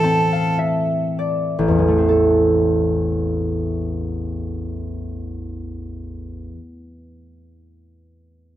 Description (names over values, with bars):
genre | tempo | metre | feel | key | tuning
celtic folk, Celtic slow air | 46-56 BPM | 3/4 | rubato | A minor | A4 = 440 Hz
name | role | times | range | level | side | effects
bright fiddle | melody | 0.0-0.6 s | A4 | -22 LUFS | right 1 dB | none
concert harp | accompaniment | 0.0-7.0 s | A1 to A5 | -18 LUFS | equal | none
room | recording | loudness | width
light reverb, studio reverb | rough home demo mix | -17 LUFS | side -12 dB against mid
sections
0.0-1.8 A section; 1.8-5.6 B section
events
harp fill 0.0-1.8; slowing down 0.0-1.8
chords
0.0 Am